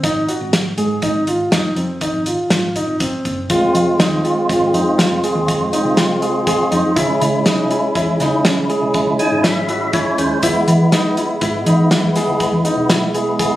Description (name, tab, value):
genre	progressive instrumental, band music in an uneven meter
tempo	121 BPM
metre	7/4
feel	straight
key	unclear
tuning	A4 = 443 Hz
part	dark grand piano	arpeggios	0.0-13.6 s	C4 to Ab4	-19 LUFS	equal	none
part	hollow-body short-scale picked electric bass	bass	0.0-13.5 s	F1 to E3	-22 LUFS	equal	none
part	warm soul drum kit	drums	0.0-13.5 s	hi-hat, kick drum, snare drum	-18 LUFS	equal	none
part	tonewheel organ	accompaniment	3.5-13.6 s	Ab3 to Ab5	-17 LUFS	equal	slow rotary speaker
part	tube shaker	percussion	10.4-12.4 s	none	-32 LUFS	left 4 dB	none
room	light reverb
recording	recorded on a phone in the room, studio reverb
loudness	-14 LUFS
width	side -14 dB against mid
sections	0.0-3.5 A section; 3.5-13.6 B section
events	tonewheel organ fill 8.9-10.4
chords	0.0 Ab; 3.5 Fm; 7.0 Dbm; 10.4 E